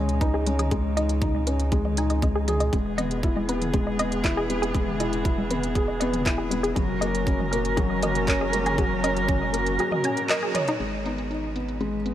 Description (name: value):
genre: piano and strings electronica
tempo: 119 BPM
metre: 4/4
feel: straight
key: unclear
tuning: A4 = 440 Hz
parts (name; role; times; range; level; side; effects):
- dark string quartet; sustained chords; 0.0-12.1 s; C#3 to B4; -31 LUFS; right 3 dB; sidechain pumping
- felt-muted upright piano; riff; 0.0-12.1 s; F#3 to C#5; -26 LUFS; left 2 dB; low-pass filter, digital delay
- round analog bass; bass; 0.0-12.1 s; E1 to C#2; -29 LUFS; equal; sidechain pumping
- organic electronic drum kit; drums; 0.1-12.1 s; handclaps, hi-hat, toms; -32 LUFS; right 1 dB; low-pass filter on hats, low-pass filter on toms, low-pass filter on snare
- wide unison pluck; arpeggios; 0.2-10.7 s; G#3 to G#5; -31 LUFS; equal; sidechain pumping, digital delay
- electronic kick drum; drums; 0.2-9.4 s; none; -25 LUFS; equal; none
room: light reverb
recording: none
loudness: -22 LUFS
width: side -12 dB against mid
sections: 0.0-10.8 A section; 10.8-12.1 B section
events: fade-in on string quartet 0.0-10.8; filter sweep on felt piano 0.0-10.8; filter sweep on synth arpeggio sound 0.0-10.8; band accent 10.3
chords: 0.0 C#sus2; 2.7 E; 6.8 F#; 10.8 G#m